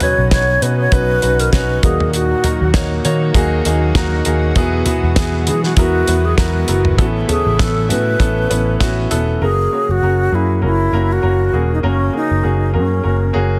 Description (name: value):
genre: piano-driven pop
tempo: 99 BPM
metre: 4/4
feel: swing 56% on 16ths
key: unclear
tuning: A4 = 439 Hz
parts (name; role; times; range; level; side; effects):
- alto flute; melody; 0.0-13.3 s; C#4 to C#5; -21 LUFS; equal; none
- warm concert grand piano; accompaniment; 0.0-13.6 s; A2 to A#5; -22 LUFS; equal; none
- lush unison pad; sustained chords; 0.0-9.4 s; A#2 to F#4; -29 LUFS; equal; chorus
- damped 70s drum kit; drums; 0.0-9.3 s; hi-hat, kick drum, snare drum, toms; -20 LUFS; equal; none
- vintage muted picked electric bass; bass; 0.2-13.6 s; E1 to E3; -20 LUFS; equal; none
room: light reverb, small room ambience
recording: dense, heavily limited modern master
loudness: -15 LUFS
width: mono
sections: 0.0-9.4 A section; 9.4-13.6 B section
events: grand piano fill 3.3-4.6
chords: 0.0 Badd9; 1.8 D#m; 4.6 Eadd9; 7.0 Aadd9; 9.4 F#